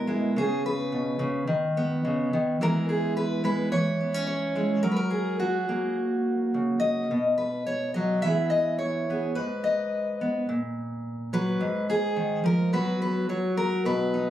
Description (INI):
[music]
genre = folk, solo fingerstyle acoustic guitar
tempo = 107 BPM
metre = 4/4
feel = straight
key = unclear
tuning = A4 = 440 Hz
[part]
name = fingerpicked steel-string acoustic guitar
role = solo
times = 0.0-14.3 s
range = G#2 to E5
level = -24 LUFS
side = equal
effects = none
[sound]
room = light reverb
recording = recorded on a phone in the room, club reverb, compression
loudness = -24 LUFS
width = side -12 dB against mid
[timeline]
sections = 0.0-14.3 A section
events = none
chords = 0.4 G#madd11; 1.5 B/D#; 2.6 E; 3.7 C#m/E; 4.8 F#; 7.1 B5; 8.2 E; 9.4 G#m; 10.5 F#/A#; 11.6 G#m69; 12.7 F#sus4; 13.3 N.C.